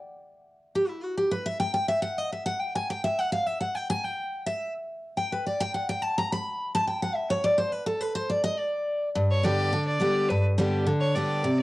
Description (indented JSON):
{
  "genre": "bluegrass",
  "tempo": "210 BPM",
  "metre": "4/4",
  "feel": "straight",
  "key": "G major",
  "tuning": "A4 = 440 Hz",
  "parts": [
    { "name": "picked steel-string acoustic guitar", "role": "accompaniment", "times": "0.8-11.6 s", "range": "G2 to B5", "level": "-25 LUFS", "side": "equal", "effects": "cassette tape, plate reverb" },
    { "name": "clear fiddle", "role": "melody", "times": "9.3-11.6 s", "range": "B4 to D5", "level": "-29 LUFS", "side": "right 1 dB", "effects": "cassette tape, plate reverb" }
  ],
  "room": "moderate studio reverb, RT60 0.5 s",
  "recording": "home recording on cassette",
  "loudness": "-25 LUFS",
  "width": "side -18 dB against mid",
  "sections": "0.0-9.2 A section; 9.2-11.6 A section",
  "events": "steel-string acoustic guitar solo 0.0-9.2; fiddle solo 9.2-11.6",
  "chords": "0.0 N.C.; 9.2 G"
}